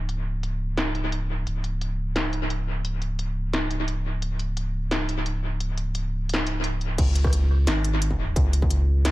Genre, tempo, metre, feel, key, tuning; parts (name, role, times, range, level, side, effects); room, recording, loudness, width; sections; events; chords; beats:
half-time drum and bass; 174 BPM; 4/4; half-time; A4 = 441 Hz
saturated sub bass; bass; 0.0-9.1 s; C#1 to C#2; -24 LUFS; equal
industrial drum kit; drums; 0.1-9.1 s; crash cymbal, hi-hat, rim click, snare drum; -29 LUFS; equal; low-pass filter on hats, small room ambience, low-pass filter on snare, low-pass filter on cymbals, dub echo
electronic kick drum; drums; 7.0-8.7 s; -25 LUFS; equal; distortion, small room ambience
little or no reverb; echo-heavy mix; -23 LUFS; side -18 dB against mid
0.0-7.0 A section; 7.0-9.1 B section
drop 7.0-9.1
| 0.09 0.43 0.78 1.12 | 1.47 1.81 2.16 2.50 | 2.85 3.19 3.54 3.88 | 4.22 4.57 4.91 5.26 | 5.60 5.95 6.29 6.64 | 6.98 7.33 7.67 8.02 | 8.36 8.71 9.05